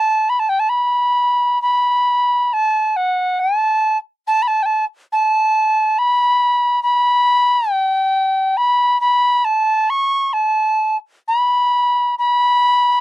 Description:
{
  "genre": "celtic folk",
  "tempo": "68 BPM",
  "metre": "3/4",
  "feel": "uneven beats, rubato",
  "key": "unclear",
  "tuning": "A4 = 436 Hz",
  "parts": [
    { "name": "tin whistle", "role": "solo", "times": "0.0-13.0 s", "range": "F#5 to C#6", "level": "-14 LUFS", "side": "equal", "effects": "none" }
  ],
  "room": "little or no reverb",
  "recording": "dry, close 1970s-style studio recording",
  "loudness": "-14 LUFS",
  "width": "side -16 dB against mid",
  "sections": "0.7-13.0 A section",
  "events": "none",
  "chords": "none"
}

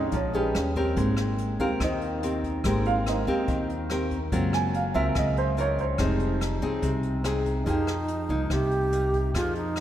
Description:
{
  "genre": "bossa nova",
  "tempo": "143 BPM",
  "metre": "4/4",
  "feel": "straight",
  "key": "F minor",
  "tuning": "A4 = 442 Hz",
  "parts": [
    { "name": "dark baby grand piano", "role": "accompaniment", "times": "0.0-9.8 s", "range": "G3 to Ab5", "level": "-30 LUFS", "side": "right 3 dB", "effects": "wide subtle chorus" },
    { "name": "nylon-string guitar", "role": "accompaniment", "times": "0.0-9.8 s", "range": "Bb2 to B4", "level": "-29 LUFS", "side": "left 2 dB", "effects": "none" },
    { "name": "upright bass", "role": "bass", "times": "0.0-9.8 s", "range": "F1 to F2", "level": "-29 LUFS", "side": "equal", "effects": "none" },
    { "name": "jazz brush drum kit", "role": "drums", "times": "0.1-9.8 s", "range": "hi-hat, kick drum, rim click", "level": "-34 LUFS", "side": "equal", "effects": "none" },
    { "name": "wooden-headed alto flute", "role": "melody", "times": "7.7-9.8 s", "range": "Eb4 to G4", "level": "-27 LUFS", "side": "right 2 dB", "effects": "analog delay" }
  ],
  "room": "moderate cathedral reverb, RT60 4.0 s",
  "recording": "dreamy mix soaked in reverb",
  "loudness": "-24 LUFS",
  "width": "side -11 dB against mid",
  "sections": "0.0-7.7 A section; 7.7-9.8 B section",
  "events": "grand piano solo 0.0-7.7",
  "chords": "0.0 Bbm11; 0.6 Eb7b13; 1.0 Abmaj9; 4.3 Gbmaj9#11; 6.0 Fm7; 7.7 Fm11"
}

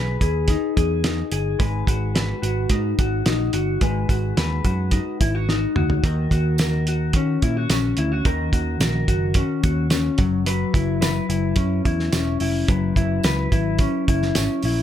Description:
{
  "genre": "indie pop, bedroom pop",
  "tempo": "108 BPM",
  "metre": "4/4",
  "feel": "straight",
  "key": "unclear",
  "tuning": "A4 = 440 Hz",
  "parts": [
    { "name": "mellow electric guitar", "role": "accompaniment", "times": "0.0-14.8 s", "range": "D#3 to B4", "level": "-23 LUFS", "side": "left 3 dB", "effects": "wide subtle chorus, vibrato effect" },
    { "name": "picked electric bass", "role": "bass", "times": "0.0-14.8 s", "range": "E1 to D#3", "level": "-23 LUFS", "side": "right 1 dB", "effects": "none" },
    { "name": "cloth-damped thuddy drum kit", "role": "drums", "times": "0.2-14.8 s", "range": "hi-hat, kick drum, snare drum, toms", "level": "-22 LUFS", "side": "right 1 dB", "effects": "none" },
    { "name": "tambourine", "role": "percussion", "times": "6.6-14.5 s", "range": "none", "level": "-33 LUFS", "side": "right 13 dB", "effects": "none" }
  ],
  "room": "light reverb",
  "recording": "none",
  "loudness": "-19 LUFS",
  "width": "side -10 dB against mid",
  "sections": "0.0-14.8 A section",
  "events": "drum fill 5.5-6.0",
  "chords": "0.0 Emaj7; 1.6 G#m7; 6.0 D#m7; 10.2 F#7sus4"
}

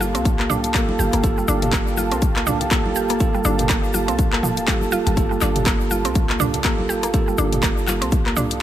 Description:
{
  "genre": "afro house",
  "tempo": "122 BPM",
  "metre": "4/4",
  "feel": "swing 58% on 16ths",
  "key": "G minor",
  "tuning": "A4 = 440 Hz",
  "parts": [
    { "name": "dark analog pad", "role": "sustained chords", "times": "0.0-8.6 s", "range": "Bb3 to A5", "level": "-28 LUFS", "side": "right 1 dB", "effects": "chorus, sidechain pumping" },
    { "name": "mallet-like synth pluck", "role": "arpeggios", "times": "0.0-8.5 s", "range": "F3 to G4", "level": "-25 LUFS", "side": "equal", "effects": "chorus, sidechain pumping, tape echo" },
    { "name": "bell-like tine electric piano", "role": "stabs", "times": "0.0-8.6 s", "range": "Bb3 to A4", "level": "-25 LUFS", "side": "right 4 dB", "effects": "sidechain pumping, tape echo" },
    { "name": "warm 808-style bass", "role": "bass", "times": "0.0-8.6 s", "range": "D1 to C2", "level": "-26 LUFS", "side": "equal", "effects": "tube saturation, sidechain pumping" },
    { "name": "congas", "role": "percussion", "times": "0.0-8.6 s", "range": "none", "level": "-31 LUFS", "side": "right 2 dB", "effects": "none" },
    { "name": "egg shaker", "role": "percussion", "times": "0.0-8.6 s", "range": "none", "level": "-32 LUFS", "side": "left 2 dB", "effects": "none" },
    { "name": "house drum kit", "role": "drums", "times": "0.1-8.6 s", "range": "handclaps, hi-hat, toms", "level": "-25 LUFS", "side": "left 1 dB", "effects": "none" },
    { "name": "electronic kick drum", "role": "drums", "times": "0.3-8.2 s", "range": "none", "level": "-21 LUFS", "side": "equal", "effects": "none" }
  ],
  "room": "light reverb",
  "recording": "none",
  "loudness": "-17 LUFS",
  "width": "side -12 dB against mid",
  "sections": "0.0-8.6 A section",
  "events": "none",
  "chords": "0.0 Gm9"
}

